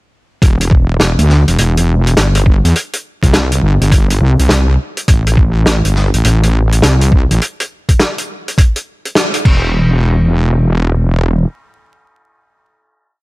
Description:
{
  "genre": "glitch hop",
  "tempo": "103 BPM",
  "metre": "4/4",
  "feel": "swing 63% on 16ths",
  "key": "E minor",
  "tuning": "A4 = 440 Hz",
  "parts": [
    { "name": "wobble bass", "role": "bass", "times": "0.4-11.4 s", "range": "E1 to E2", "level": "-11 LUFS", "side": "equal", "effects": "chorus" },
    { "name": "electronic kick drum", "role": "drums", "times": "0.4-9.6 s", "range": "none", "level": "-9 LUFS", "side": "equal", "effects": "none" },
    { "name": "warm soul drum kit", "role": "drums", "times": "0.4-9.6 s", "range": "crash cymbal, hi-hat, snare drum", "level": "-16 LUFS", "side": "equal", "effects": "none" }
  ],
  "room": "little or no reverb",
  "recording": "vinyl crackle",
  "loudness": "-10 LUFS",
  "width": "side -21 dB against mid",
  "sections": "0.4-9.7 drop; 9.7-12.1 final hit",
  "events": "drop 0.4-9.7; band accent 9.2",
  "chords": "none",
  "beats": "| 0.42 1.00 1.59 2.17 | 2.75 3.33 3.92 4.50 | 5.08 5.66 6.25 6.83 | 7.41 7.99 8.58 9.16 | 9.74 10.32 10.91"
}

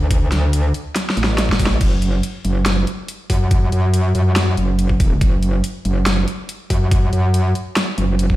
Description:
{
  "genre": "heavy wobble dubstep",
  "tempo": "141 BPM",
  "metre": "4/4",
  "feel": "half-time",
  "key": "unclear",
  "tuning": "A4 = 440 Hz",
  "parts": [
    { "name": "metallic wobble bass", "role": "bass", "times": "0.0-8.4 s", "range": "F#1 to F#2", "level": "-16 LUFS", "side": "equal", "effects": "chorus, overdrive" },
    { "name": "dubstep drum kit", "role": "drums", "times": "0.1-8.3 s", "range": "crash cymbal, hi-hat, snare drum", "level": "-22 LUFS", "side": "equal", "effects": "none" },
    { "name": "electronic kick drum", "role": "drums", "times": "0.1-8.4 s", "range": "none", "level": "-17 LUFS", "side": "equal", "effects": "overdrive" }
  ],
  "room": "little or no reverb",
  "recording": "played on a big sound system in a bare room, stone room reverb",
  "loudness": "-15 LUFS",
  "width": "side -16 dB against mid",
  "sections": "0.0-8.4 A section",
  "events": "drum fill 1.0-1.8",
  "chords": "none",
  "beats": "| 0.11 0.53 0.96 1.38 | 1.81 2.23 2.66 3.08 | 3.51 3.94 4.36 4.79 | 5.21 5.64 6.06 6.49 | 6.91 7.34 7.76 8.19"
}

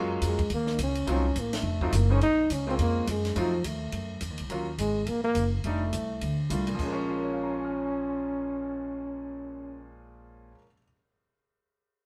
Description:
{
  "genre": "jazz, small-group swing and bop",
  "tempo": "210 BPM",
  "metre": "4/4",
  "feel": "swing 59% on 8ths",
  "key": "Bb minor",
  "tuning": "A4 = 440 Hz",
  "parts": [
    { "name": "clear baby grand piano", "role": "accompaniment", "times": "0.0-10.8 s", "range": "Bb2 to F6", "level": "-36 LUFS", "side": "equal", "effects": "none" },
    { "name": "upright bass", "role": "bass", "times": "0.0-10.5 s", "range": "F1 to Gb2", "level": "-32 LUFS", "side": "equal", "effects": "none" },
    { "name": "compact cocktail drum kit", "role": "drums", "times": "0.2-9.0 s", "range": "crash cymbal, cymbal swell, hi-hat, kick drum, ride cymbal, snare drum", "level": "-39 LUFS", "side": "equal", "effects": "none" },
    { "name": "dark trombone", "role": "melody", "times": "0.3-9.9 s", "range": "F3 to Eb4", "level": "-32 LUFS", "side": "equal", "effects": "none" }
  ],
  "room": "light reverb",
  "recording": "band playing live in one room",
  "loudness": "-29 LUFS",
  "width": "mono",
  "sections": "0.0-4.5 A section; 4.5-6.8 B section; 6.8-9.1 C section",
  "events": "band accent 1.5",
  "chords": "0.0 Gbmaj7; 1.1 F7b9; 2.2 Bbm7; 3.4 F7b9; 4.5 Ebm9; 5.6 F13; 6.8 Bbm7",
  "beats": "0.22 0.50 0.79 | 1.07 1.36 1.65 1.93 | 2.21 2.50 2.79 3.07 | 3.36 3.64 3.93 4.21 | 4.50 4.79 5.07 5.36 | 5.64 5.93 6.21 6.50 | 6.79 7.07 7.36 7.64 | 7.93 8.22 8.50 8.79"
}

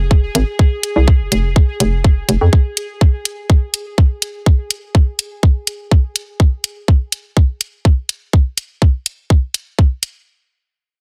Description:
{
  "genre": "minimal techno",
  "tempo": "124 BPM",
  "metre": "4/4",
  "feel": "straight",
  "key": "F minor",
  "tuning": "A4 = 437 Hz",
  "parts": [
    { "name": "hollow knocking FM bass", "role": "bass", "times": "0.0-2.5 s", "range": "F1 to F2", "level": "-17 LUFS", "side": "equal", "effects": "sidechain pumping" },
    { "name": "pulsing gated texture", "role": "texture", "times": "0.0-6.4 s", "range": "Ab4", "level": "-32 LUFS", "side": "equal", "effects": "chorus, built-in reverb, sidechain pumping" },
    { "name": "electronic kick drum", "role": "drums", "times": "0.1-9.9 s", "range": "none", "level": "-12 LUFS", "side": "equal", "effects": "none" },
    { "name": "electronic hi-hat", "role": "drums", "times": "0.3-10.1 s", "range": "none", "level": "-20 LUFS", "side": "equal", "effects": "none" }
  ],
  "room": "digital ambience",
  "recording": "none",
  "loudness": "-16 LUFS",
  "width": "mono",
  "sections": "0.0-10.3 A section",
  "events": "filter sweep on FM bass 0.0-2.5",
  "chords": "0.0 Fm",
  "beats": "0.11 | 0.59 1.08 1.56 2.04 | 2.53 3.01 3.50 3.98 | 4.46 4.95 5.43 5.92 | 6.40 6.88 7.37 7.85 | 8.33 8.82 9.30 9.79"
}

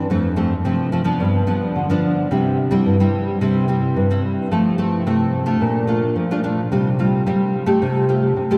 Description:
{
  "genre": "samba",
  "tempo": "109 BPM",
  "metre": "4/4",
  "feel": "straight",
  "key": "F major",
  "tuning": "A4 = 440 Hz",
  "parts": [
    { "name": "nylon-string guitar", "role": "solo", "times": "0.0-8.6 s", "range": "F2 to G4", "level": "-19 LUFS", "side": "equal", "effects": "analog chorus, analog delay" }
  ],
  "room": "wet cathedral reverb, RT60 6.1 s",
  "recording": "dreamy mix soaked in reverb",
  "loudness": "-19 LUFS",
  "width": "mono",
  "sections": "0.0-8.6 A section",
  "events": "none",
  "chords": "0.1 F; 1.2 G7; 2.3 C; 4.5 Fmaj7; 5.6 Bbmaj7; 6.7 Fadd9/C",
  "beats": "| 0.10 0.65 1.20 1.75 | 2.31 2.86 3.41 3.96 | 4.51 5.06 5.61 6.16 | 6.71 7.26 7.81 8.36"
}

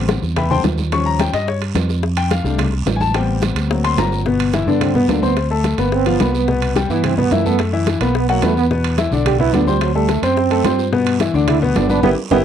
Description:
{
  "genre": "Afro-Cuban jazz",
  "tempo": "216 BPM",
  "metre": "4/4",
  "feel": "straight",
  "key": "G major",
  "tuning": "A4 = 440 Hz",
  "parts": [
    { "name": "clear baby grand piano", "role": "accompaniment", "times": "0.0-12.4 s", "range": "B2 to Db6", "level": "-18 LUFS", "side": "left 6 dB", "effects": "none" },
    { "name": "fingered electric bass", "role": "bass", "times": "0.0-12.4 s", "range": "G1 to G2", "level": "-20 LUFS", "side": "right 1 dB", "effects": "none" },
    { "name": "bongos", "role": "percussion", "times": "0.1-12.4 s", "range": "none", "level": "-25 LUFS", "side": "left 8 dB", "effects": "none" },
    { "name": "congas", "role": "percussion", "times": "0.1-12.4 s", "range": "none", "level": "-24 LUFS", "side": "right 1 dB", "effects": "none" },
    { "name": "guiro", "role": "percussion", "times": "0.1-12.4 s", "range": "none", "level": "-34 LUFS", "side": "right 12 dB", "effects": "none" },
    { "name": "timbales", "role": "percussion", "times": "0.1-12.4 s", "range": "none", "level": "-26 LUFS", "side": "right 12 dB", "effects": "none" },
    { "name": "warm trombone", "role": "second line", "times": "4.7-12.4 s", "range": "F#3 to G4", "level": "-19 LUFS", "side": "right 14 dB", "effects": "none" }
  ],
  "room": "light reverb",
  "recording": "dry, close 1970s-style studio recording",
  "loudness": "-14 LUFS",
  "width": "side -9 dB against mid",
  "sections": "0.0-4.3 A section; 4.3-12.4 A section",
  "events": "grand piano solo 0.0-4.3; trombone solo 4.3-12.4; band accent 12.0-12.4",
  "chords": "0.0 Am11; 0.9 Eb9; 2.0 F69; 3.1 Am7; 3.7 Daug7; 4.3 G6; 5.4 D7sus4; 5.9 G7#9; 6.5 Cmaj7; 7.6 F#m7; 8.1 B5; 8.7 E5; 9.8 D7; 10.9 G6",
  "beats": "0.09 0.37 0.65 | 0.92 1.20 1.48 1.76 | 2.03 2.31 2.59 2.87 | 3.15 3.42 3.70 3.98 | 4.26 4.53 4.81 5.09 | 5.37 5.65 5.92 6.20 | 6.48 6.76 7.04 7.32 | 7.59 7.87 8.15 8.43 | 8.70 8.98 9.26 9.54 | 9.81 10.09 10.37 10.65 | 10.93 11.20 11.48 11.76 | 12.04 12.31"
}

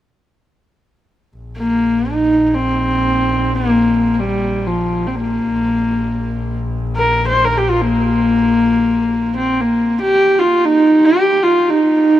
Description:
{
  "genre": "mongolian traditional",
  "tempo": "free time",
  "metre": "none",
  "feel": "none",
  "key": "Bb zhi mode",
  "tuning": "A4 = 440 Hz",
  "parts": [
    { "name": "clear double bass", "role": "drone", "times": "1.4-9.7 s", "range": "Bb1", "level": "-23 LUFS", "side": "left 1 dB", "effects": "none" },
    { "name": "rich horsehead fiddle", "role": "melody", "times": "1.6-12.2 s", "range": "F3 to C5", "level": "-13 LUFS", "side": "equal", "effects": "none" }
  ],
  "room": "moderate huge ambient reverb, RT60 6.8 s",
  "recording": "none",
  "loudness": "-13 LUFS",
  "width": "side -12 dB against mid",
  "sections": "1.4-9.6 A section; 9.6-12.2 B section",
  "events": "none",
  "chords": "none",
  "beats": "free time"
}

